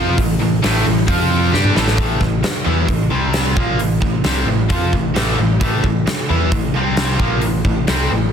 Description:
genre	hard rock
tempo	132 BPM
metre	4/4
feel	straight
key	A minor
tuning	A4 = 440 Hz
part	cranked stack guitar	riff	0.0-8.3 s	A2 to G4	-21 LUFS	left 11 dB	overdrive
part	distorted electric guitar	riff	0.0-2.0 s	A2 to G4	-22 LUFS	equal	distortion
part	tight distorted guitar	riff	0.0-8.3 s	A2 to G4	-22 LUFS	right 12 dB	distortion
part	picked electric bass	bass	0.0-8.3 s	A1 to G2	-20 LUFS	equal	none
part	huge arena drum kit	drums	0.2-8.0 s	hi-hat, kick drum, snare drum, toms	-19 LUFS	equal	none
room	little or no reverb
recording	dense, heavily limited modern master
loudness	-14 LUFS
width	side -8 dB against mid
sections	0.0-2.0 A section; 2.0-8.3 B section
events	drum fill 1.5-2.0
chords	0.0 Am; 1.1 F5; 1.5 A5; 3.1 C5; 3.6 Am; 6.7 C5; 7.2 Am

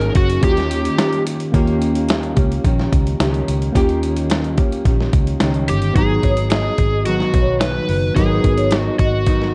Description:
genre	indie pop, bedroom pop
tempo	109 BPM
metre	4/4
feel	straight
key	G# dorian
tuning	A4 = 439 Hz
part	overdriven slide guitar	melody	0.0-1.2, 5.7-9.5 s	F#4 to B4	-23 LUFS	equal	analog chorus, tape echo
part	nylon-string guitar	accompaniment	0.0-9.5 s	G#2 to A#4	-26 LUFS	equal	lush chorus, vibrato effect
part	tine electric piano	accompaniment	0.0-9.5 s	A#3 to A#5	-27 LUFS	equal	cassette tape
part	string machine, violas	sustained chords	0.0-1.5 s	D#3 to A#4	-33 LUFS	equal	none
part	vintage muted fingered electric bass	bass	0.0-9.5 s	F#1 to D#2	-23 LUFS	equal	none
part	dusty soul sampler-style drum kit	drums	0.0-9.5 s	hi-hat, kick drum, snare drum	-21 LUFS	equal	vintage 12-bit sampler grit
part	vibraphone with soft mallets	second line	6.2-9.1 s	B4 to D#5	-27 LUFS	equal	ensemble chorus
room	light reverb, digital ambience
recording	dark, warm production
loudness	-17 LUFS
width	mono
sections	0.0-1.5 A section; 1.5-6.0 B section; 6.0-9.5 C section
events	none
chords	0.4 D#7; 6.0 G#m7

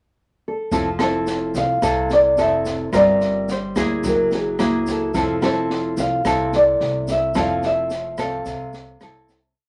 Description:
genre	bossa nova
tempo	108 BPM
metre	4/4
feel	straight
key	F major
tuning	A4 = 439 Hz
part	nylon-string guitar	melody	0.5-9.3 s	Ab4 to F5	-22 LUFS	equal	none
part	nylon-string guitar	accompaniment	0.7-9.5 s	C3 to Bb4	-24 LUFS	equal	none
part	upright bass	bass	0.7-9.5 s	F1 to D2	-33 LUFS	equal	none
part	open jazz drum kit	drums	0.7-9.4 s	kick drum, rim click, snare drum	-32 LUFS	equal	none
part	tube shaker	percussion	0.7-9.6 s	none	-44 LUFS	equal	none
room	moderate club reverb, RT60 0.7 s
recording	none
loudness	-20 LUFS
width	mono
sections	0.0-0.7 pickup bar; 0.7-9.6 A section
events	fade-out 7.4-9.6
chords	0.0 N.C.; 0.7 Fmaj7; 2.9 Gm7; 4.0 Gb9; 5.1 Fmaj7

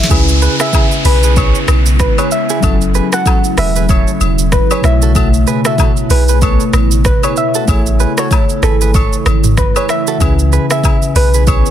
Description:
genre	afrobeats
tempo	95 BPM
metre	4/4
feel	swing 58% on 16ths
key	C# minor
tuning	A4 = 440 Hz
part	soft round pluck	melody	0.0-11.7 s	A4 to F#5	-19 LUFS	left 1 dB	chorus, tape echo
part	tine electric piano	accompaniment	0.0-11.7 s	B2 to C#5	-20 LUFS	left 5 dB	medium tremolo
part	ethereal airy pad	sustained chords	0.0-11.7 s	C#3 to E4	-20 LUFS	right 1 dB	ensemble chorus, built-in reverb
part	punchy sub bass	bass	0.0-11.6 s	E1 to C#2	-12 LUFS	equal	none
part	afro-pop drum kit	drums	0.0-11.7 s	hi-hat, kick drum, rim click, shaker, snare drum, toms	-14 LUFS	equal	soft clipping on snare
part	riser and downlifter	sound effects	0.0-5.2 s	none	-22 LUFS	equal	none
part	direct-recorded clean electric guitar	riff	0.1-11.7 s	E4 to C#5	-22 LUFS	right 10 dB	spring reverb, tape echo
part	agogo bells and woodblock	percussion	0.1-11.6 s	none	-23 LUFS	left 11 dB	none
room	little or no reverb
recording	dense, heavily limited modern master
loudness	-9 LUFS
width	side -10 dB against mid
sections	0.1-11.7 A section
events	none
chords	0.1 C#m7; 2.6 F#m7; 4.8 B9sus4; 7.7 Amaj7; 10.2 C#m7

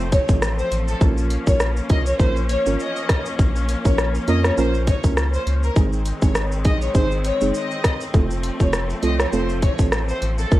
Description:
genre	dancehall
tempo	101 BPM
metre	4/4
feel	swing 56% on 16ths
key	Bb minor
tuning	A4 = 440 Hz
part	rich studio string section	sustained chords	0.0-10.6 s	Eb3 to Db4	-30 LUFS	left 2 dB	sidechain pumping
part	round analog bass	bass	0.0-10.6 s	F1 to F2	-22 LUFS	equal	none
part	downlifter	sound effects	0.0-1.0 s	none	barely audible	none	none
part	warm studio violin section	melody	0.1-10.5 s	A4 to Eb5	-26 LUFS	left 1 dB	digital delay
part	island pop drum kit	drums	0.1-10.6 s	hi-hat, kick drum, rim click, shaker	-20 LUFS	equal	none
part	deep mellow chord stab	accompaniment	0.3-10.6 s	Ab3 to Bb4	-26 LUFS	right 4 dB	chorus, sidechain pumping
room	light reverb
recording	worn, warbling old tape, cassette tape, warbly pitch drift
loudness	-17 LUFS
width	side -16 dB against mid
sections	0.0-10.6 A section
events	none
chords	0.0 F; 1.0 Bbm; 5.8 Ab; 8.1 F

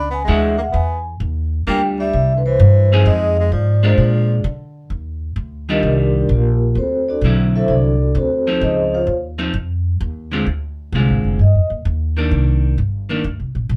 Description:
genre	jazz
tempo	130 BPM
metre	4/4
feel	swing 67% on 8ths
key	Eb major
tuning	A4 = 442 Hz
part	vibraphone with medium mallets	melody	0.0-11.7 s	Bb3 to B5	-22 LUFS	equal	none
part	breathy tenor saxophone	second line	0.0-4.4 s	D3 to D4	-28 LUFS	equal	none
part	upright bass	bass	0.0-13.8 s	F1 to D3	-19 LUFS	equal	none
part	vintage hollow-body jazz guitar	accompaniment	0.3-13.2 s	D3 to Ab4	-22 LUFS	equal	none
room	light reverb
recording	band playing live in one room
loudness	-17 LUFS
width	mono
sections	0.0-4.9 A section; 4.9-13.8 B section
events	vibraphone solo 4.9-13.8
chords	0.0 E9; 1.2 Ebmaj9; 2.1 C; 3.1 Fm7; 4.0 Bb7; 4.9 Ebmaj9; 6.8 D9; 8.6 Dbmaj9; 10.5 Dm7b5; 11.4 Gm7; 12.3 Cm9

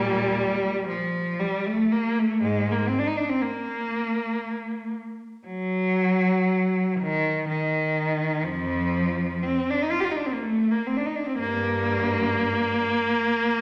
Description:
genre	classical, free, expressive piece for unaccompanied cello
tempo	60 BPM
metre	3/4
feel	uneven beats, rubato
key	Bb major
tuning	A4 = 440 Hz
part	rich cello	solo	0.0-13.6 s	F2 to G4	-25 LUFS	equal	none
room	wet recital hall reverb, RT60 1.3 s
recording	none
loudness	-25 LUFS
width	mono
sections	0.0-13.6 A section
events	none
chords	none

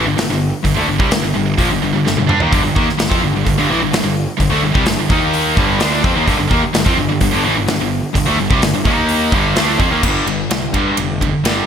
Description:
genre	hard rock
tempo	128 BPM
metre	4/4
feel	straight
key	G minor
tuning	A4 = 441 Hz
part	distorted electric guitar	riff	0.0-11.7 s	G2 to Eb4	-19 LUFS	left 8 dB	overdrive
part	scooped high-gain guitar	riff	0.0-11.7 s	G2 to Eb4	-19 LUFS	right 10 dB	distortion
part	fuzz picked electric bass	bass	0.0-11.6 s	F1 to G2	-21 LUFS	equal	overdrive
part	big rock drum kit	drums	0.2-11.6 s	crash cymbal, hi-hat, kick drum, ride cymbal, snare drum, toms	-18 LUFS	equal	gated reverb
part	biting overdriven guitar	riff	2.5-10.0 s	G2 to Eb4	-21 LUFS	equal	none
room	light reverb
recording	bright 1980s-style digital production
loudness	-13 LUFS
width	side -8 dB against mid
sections	0.0-10.0 A section; 10.0-11.7 B section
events	drum fill 2.1-2.5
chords	0.0 Gm; 5.1 Eb5; 5.6 Gm; 8.9 Eb5; 9.3 Gm; 10.0 G5

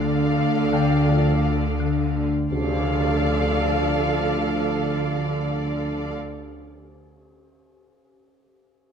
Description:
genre	cinematic, suspense film score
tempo	84 BPM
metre	4/4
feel	straight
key	D minor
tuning	A4 = 439 Hz
part	muted studio violin section	melody	0.0-6.1 s	F5	-30 LUFS	left 4 dB	none
part	muted studio violin section	second line	0.0-6.1 s	D5	-32 LUFS	left 4 dB	none
part	muted studio viola section	accompaniment	0.0-6.1 s	A4	-31 LUFS	right 4 dB	none
part	marimba with medium mallets	riff	0.0-2.4 s	D3 to D4	-25 LUFS	left 5 dB	none
part	muted studio cello section	bass	0.0-6.1 s	D3	-26 LUFS	right 2 dB	none
part	muted studio double bass section	bass	0.0-6.1 s	D2	-28 LUFS	right 5 dB	none
part	sub bass with octave	drone	0.0-6.1 s	D2	-31 LUFS	equal	none
part	dark concert grand piano	texture	0.0-2.5 s	F5 to G5	-38 LUFS	left 3 dB	none
part	dark French horn section	sustained chords	1.1-6.1 s	F3 to A4	-31 LUFS	equal	none
part	tam-tam	percussion	2.5-6.8 s	none	-33 LUFS	left 1 dB	none
room	wet scoring stage reverb, RT60 1.7 s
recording	none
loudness	-20 LUFS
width	side -7 dB against mid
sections	0.0-2.5 A section; 2.5-5.4 B section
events	band accent 2.5-3.2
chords	0.0 Dm

